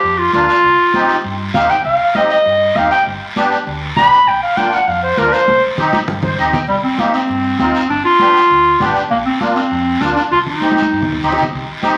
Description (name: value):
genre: latin, cumbia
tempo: 198 BPM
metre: 4/4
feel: straight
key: C minor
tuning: A4 = 441 Hz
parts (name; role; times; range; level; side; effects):
- mellow clarinet; melody; 0.0-11.3 s; G3 to B5; -15 LUFS; equal; none
- fingered electric bass; bass; 0.0-11.7 s; G1 to G2; -30 LUFS; equal; none
- congas; percussion; 0.0-12.0 s; none; -26 LUFS; equal; none
- guiro; percussion; 0.0-12.0 s; none; -29 LUFS; equal; none
- musette accordion; accompaniment; 0.3-12.0 s; Bb3 to G5; -21 LUFS; equal; none
room: wet large studio reverb, RT60 1.1 s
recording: vinyl crackle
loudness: -14 LUFS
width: mono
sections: 0.0-6.7 A section; 6.7-12.0 B section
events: clarinet solo 0.0-6.7; drum fill 5.5-6.7, 10.6-11.5; accordion fill 6.1-6.7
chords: 0.0 Bb; 0.6 Cm; 3.1 G; 4.3 Bb; 5.5 Cm; 7.9 G7; 9.1 Bb; 10.3 Cm